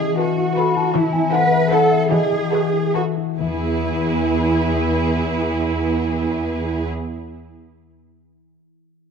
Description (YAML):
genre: cinematic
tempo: 130-160 BPM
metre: 3/4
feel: straight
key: E major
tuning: A4 = 435 Hz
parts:
  - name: large celesta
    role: melody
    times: 0.0-7.2 s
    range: D#5 to B5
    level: -23 LUFS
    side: left 3 dB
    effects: none
  - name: rich studio viola section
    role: accompaniment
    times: 0.0-6.9 s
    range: E3 to E4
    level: -24 LUFS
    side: right 3 dB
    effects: none
  - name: concert harp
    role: arpeggios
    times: 0.0-7.4 s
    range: E3 to E5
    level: -23 LUFS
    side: left 10 dB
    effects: none
  - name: rich studio cello section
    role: bass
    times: 0.0-6.9 s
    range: E2 to B4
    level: -21 LUFS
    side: right 4 dB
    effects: none
  - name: rich chamber violin section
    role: melody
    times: 0.2-6.9 s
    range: B4 to C5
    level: -31 LUFS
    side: left 2 dB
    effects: none
  - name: clear studio violin section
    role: second line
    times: 0.2-6.9 s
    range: E4 to A4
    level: -29 LUFS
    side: left 2 dB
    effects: none
room: moderate scoring stage reverb, RT60 1.8 s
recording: dark, warm production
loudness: -17 LUFS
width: side -6 dB against mid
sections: 0.0-3.4 A section; 3.4-6.1 B section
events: slowing down 0.4-3.4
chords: 0.0 B7/E; 0.9 Am/E; 2.1 B7/E; 3.4 E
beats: 0.19 0.56 | 0.94 1.32 1.71 | 2.11 2.52 2.95 | 3.40 3.85 4.30 | 4.76 5.22 5.67